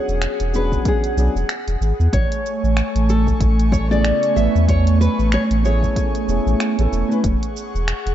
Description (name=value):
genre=sunset chillout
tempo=94 BPM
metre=4/4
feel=swing 58% on 16ths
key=A major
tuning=A4 = 441 Hz
part: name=nylon-string guitar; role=melody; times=0.0-6.9 s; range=G#4 to E5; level=-24 LUFS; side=equal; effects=tape echo
part: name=dark concert grand piano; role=accompaniment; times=0.0-7.2 s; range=C#3 to C#5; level=-25 LUFS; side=left 2 dB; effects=auto-pan, ping-pong delay
part: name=airy breathy pad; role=sustained chords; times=0.0-8.1 s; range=A3 to C#6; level=-23 LUFS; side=right 2 dB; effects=chorus, vintage 12-bit sampler grit
part: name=warm sub bass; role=bass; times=0.1-8.1 s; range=E1 to E2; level=-18 LUFS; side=equal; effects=none
part: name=deep house drum kit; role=drums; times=0.1-8.1 s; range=finger snaps, hi-hat, shaker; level=-30 LUFS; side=right 1 dB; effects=none
part: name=electronic kick drum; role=drums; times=0.7-7.4 s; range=none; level=-21 LUFS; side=equal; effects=none
room=light reverb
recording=dark, warm production, nothing above 7.8 kHz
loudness=-16 LUFS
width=side -11 dB against mid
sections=0.0-8.1 A section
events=none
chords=0.0 E13; 2.1 Amaj7; 7.2 E69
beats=0.22 0.85 1.49 | 2.13 2.77 3.41 4.05 | 4.68 5.32 5.96 6.60 | 7.24 7.88